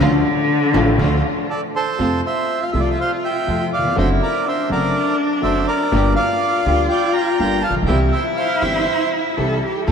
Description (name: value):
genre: tango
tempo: 122 BPM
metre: 4/4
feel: rubato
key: F major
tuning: A4 = 438 Hz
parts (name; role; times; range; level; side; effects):
- warm cello; second line; 0.0-9.9 s; D3 to A4; -21 LUFS; left 2 dB; none
- warm concert grand piano; accompaniment; 0.0-9.9 s; G1 to A4; -22 LUFS; left 2 dB; none
- warm studio string section; stabs; 0.0-9.9 s; A3 to A4; -29 LUFS; right 4 dB; ping-pong delay
- upright bass; bass; 0.0-9.9 s; F#1 to F2; -22 LUFS; right 2 dB; none
- bandoneon; melody; 1.5-9.1 s; A4 to Bb5; -20 LUFS; right 2 dB; ping-pong delay
room: wet huge ambient reverb, RT60 4.2 s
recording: dreamy mix soaked in reverb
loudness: -16 LUFS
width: side -7 dB against mid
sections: 0.0-2.0 A section; 2.0-9.9 B section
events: cello solo 0.0-2.0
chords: 0.0 Dm; 2.0 F; 4.0 D7/F#; 5.9 Gm; 7.9 C